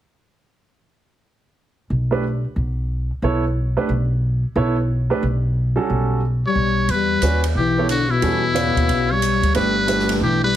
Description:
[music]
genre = modal jazz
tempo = 181 BPM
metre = 4/4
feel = swing 64% on 8ths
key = E dorian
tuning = A4 = 440 Hz
[part]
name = upright bass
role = bass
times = 1.9-10.6 s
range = G1 to E2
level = -21 LUFS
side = equal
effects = none
[part]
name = clear baby grand piano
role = accompaniment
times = 2.1-10.4 s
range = C#3 to D5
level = -23 LUFS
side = right 4 dB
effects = none
[part]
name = trumpet with metal mute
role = melody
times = 6.5-10.6 s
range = E4 to C#5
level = -21 LUFS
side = equal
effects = none
[part]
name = trombone with bucket mute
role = second line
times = 6.5-10.6 s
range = B2 to G3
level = -22 LUFS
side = left 6 dB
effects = none
[part]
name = open jazz drum kit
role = drums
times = 6.9-10.2 s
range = hi-hat, ride cymbal, snare drum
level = -30 LUFS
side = right 2 dB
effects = none
[sound]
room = moderate club reverb, RT60 0.8 s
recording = heavily compressed radio sound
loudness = -17 LUFS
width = side -11 dB against mid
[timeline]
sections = 1.6-6.9 A section; 6.9-10.6 B section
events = none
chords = 1.6 Em (rootless); 6.9 Em9

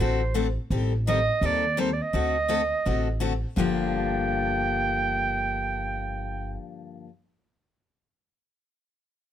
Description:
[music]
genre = acoustic string swing (jazz manouche)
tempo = 168 BPM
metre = 4/4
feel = swing 62% on 8ths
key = G minor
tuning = A4 = 440 Hz
[part]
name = warm clarinet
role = melody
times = 0.0-6.6 s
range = C5 to G5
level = -27 LUFS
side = right 4 dB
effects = none
[part]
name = picked steel-string acoustic guitar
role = accompaniment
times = 0.0-7.1 s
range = G2 to A4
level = -28 LUFS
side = left 6 dB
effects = none
[part]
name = upright bass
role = bass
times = 0.0-6.5 s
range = G1 to Eb2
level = -29 LUFS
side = equal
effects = none
[sound]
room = light reverb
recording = close, detailed microphones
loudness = -23 LUFS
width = side -10 dB against mid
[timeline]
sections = 0.0-3.6 A section; 3.6-6.4 B section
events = none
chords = 0.0 D7; 0.7 Am7b5; 2.1 D7b9; 3.6 Gm7

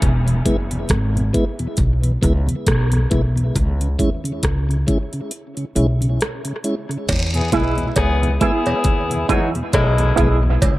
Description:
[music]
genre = dub reggae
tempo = 68 BPM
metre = 4/4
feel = swing 57% on 16ths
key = unclear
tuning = A4 = 440 Hz
[part]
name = upright bass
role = bass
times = 0.0-10.8 s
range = E1 to E2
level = -19 LUFS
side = equal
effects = none
[part]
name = drum and bass drum kit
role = drums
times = 0.0-10.8 s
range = crash cymbal, hi-hat, kick drum, rim click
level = -21 LUFS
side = equal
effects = none
[part]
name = mellow tonewheel organ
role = accompaniment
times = 0.3-10.5 s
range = E2 to E4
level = -24 LUFS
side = equal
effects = slow rotary speaker, dub echo
[part]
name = cowbell and jawbone-type rattle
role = percussion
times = 7.1-10.8 s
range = none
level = -27 LUFS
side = right 3 dB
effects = dub echo
[part]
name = clear horn section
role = second line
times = 7.3-10.4 s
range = B2 to B4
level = -23 LUFS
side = left 3 dB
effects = dub echo
[part]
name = electric guitar with an envelope filter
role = accompaniment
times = 7.5-10.4 s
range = B3 to G#4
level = -23 LUFS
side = right 5 dB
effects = ensemble chorus, dub echo
[sound]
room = light reverb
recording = none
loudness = -16 LUFS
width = side -17 dB against mid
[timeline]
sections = 0.0-7.1 A section; 7.1-10.8 B section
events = break 0.0-7.1; kick muted 5.3-7.1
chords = 0.0 E; 3.6 C#m

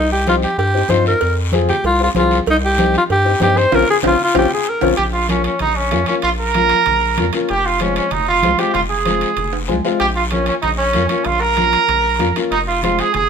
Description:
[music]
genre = latin, cumbia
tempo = 191 BPM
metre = 4/4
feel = straight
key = Bb dorian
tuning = A4 = 440 Hz
[part]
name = breathy alto saxophone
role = melody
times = 0.0-4.9 s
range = Eb4 to C5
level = -15 LUFS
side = left 1 dB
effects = none
[part]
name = round analog bass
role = bass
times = 0.0-13.3 s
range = F1 to G2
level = -21 LUFS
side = equal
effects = none
[part]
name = warm upright piano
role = accompaniment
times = 0.3-13.1 s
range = Ab3 to Ab5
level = -21 LUFS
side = left 6 dB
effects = none
[part]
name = congas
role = percussion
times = 0.3-13.3 s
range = none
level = -25 LUFS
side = right 2 dB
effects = none
[part]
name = cowbell and timbales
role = percussion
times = 0.3-13.3 s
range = none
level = -27 LUFS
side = right 7 dB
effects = none
[part]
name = guiro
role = percussion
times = 0.3-13.3 s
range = none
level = -29 LUFS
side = left 6 dB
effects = none
[part]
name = warm trumpet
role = second line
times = 5.0-13.3 s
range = Db4 to Bb4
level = -16 LUFS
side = right 4 dB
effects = none
[sound]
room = moderate studio reverb, RT60 0.9 s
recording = minimal, uncompressed stereo recording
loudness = -13 LUFS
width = side -7 dB against mid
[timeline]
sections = 0.0-5.0 A section; 5.0-13.3 B section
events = band accent 3.7-5.0; drum fill 4.3-5.0, 9.5-10.0; trumpet solo 5.0-13.3; upright piano fill 9.5-10.0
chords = 0.0 Cm; 1.2 Fm; 2.5 Cm; 3.7 Bbmadd9; 5.0 Bbm; 7.5 Fm; 10.0 Bbm; 12.5 Fm

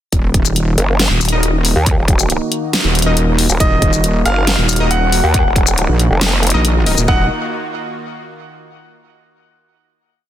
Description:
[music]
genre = heavy wobble dubstep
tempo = 138 BPM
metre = 4/4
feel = half-time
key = Eb minor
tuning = A4 = 441 Hz
[part]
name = supersaw pad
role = sustained chords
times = 0.1-7.3 s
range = Eb3 to Gb4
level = -23 LUFS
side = right 1 dB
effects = sidechain pumping, low-pass filter
[part]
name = wobble bass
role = bass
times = 0.1-7.3 s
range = Eb1 to Bb1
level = -15 LUFS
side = equal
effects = chorus, overdrive
[part]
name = dubstep drum kit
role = drums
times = 0.1-7.1 s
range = hi-hat, shaker, snare drum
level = -17 LUFS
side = left 2 dB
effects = none
[part]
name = electronic kick drum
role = drums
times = 0.1-7.2 s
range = none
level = -15 LUFS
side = equal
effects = none
[part]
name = vowel-sweep wobble bass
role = bass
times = 0.8-6.5 s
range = Eb1 to Eb2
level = -15 LUFS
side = equal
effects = chorus, overdrive
[part]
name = orchestra-hit-like synth stab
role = stabs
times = 1.3-7.2 s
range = Eb4 to Eb5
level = -23 LUFS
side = left 2 dB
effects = built-in reverb, cassette tape, ping-pong delay
[part]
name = bright grand piano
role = melody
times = 3.6-7.2 s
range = Eb5 to Gb5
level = -20 LUFS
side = right 1 dB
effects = ping-pong delay
[sound]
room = light reverb, digital ambience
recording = dense, heavily limited modern master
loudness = -12 LUFS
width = side -12 dB against mid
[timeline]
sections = 0.1-7.1 drop; 7.1-8.8 final chord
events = drop 0.1-7.1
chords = 0.1 Ebm; 7.1 Eb5

